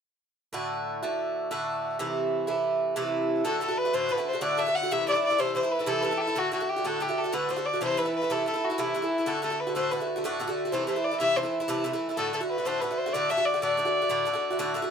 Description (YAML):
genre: celtic folk, Celtic slip jig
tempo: 124 BPM (dotted quarters)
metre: 9/8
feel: straight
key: D mixolydian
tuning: A4 = 440 Hz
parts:
  - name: Irish bouzouki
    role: accompaniment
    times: 0.5-14.9 s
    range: A2 to F#4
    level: -28 LUFS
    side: right 2 dB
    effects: none
  - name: warm fiddle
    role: melody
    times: 3.4-14.7 s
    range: E4 to F#5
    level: -27 LUFS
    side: left 2 dB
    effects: none
room: moderate studio reverb, RT60 0.6 s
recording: none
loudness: -25 LUFS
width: side -7 dB against mid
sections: 0.5-3.4 A section; 3.4-14.9 B section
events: none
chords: 0.5 D; 2.0 Am; 3.4 D; 4.9 Am; 6.4 D; 7.8 Am; 9.3 D; 10.7 Am; 12.2 D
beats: | 0.54 1.02 1.51 | 2.00 2.48 2.96 | 3.45 3.93 4.42 | 4.90 5.39 5.87 | 6.36 6.84 7.33 | 7.81 8.30 8.78 | 9.27 9.75 10.23 | 10.72 11.20 11.69 | 12.17 12.65 13.14 | 13.62 14.11 14.59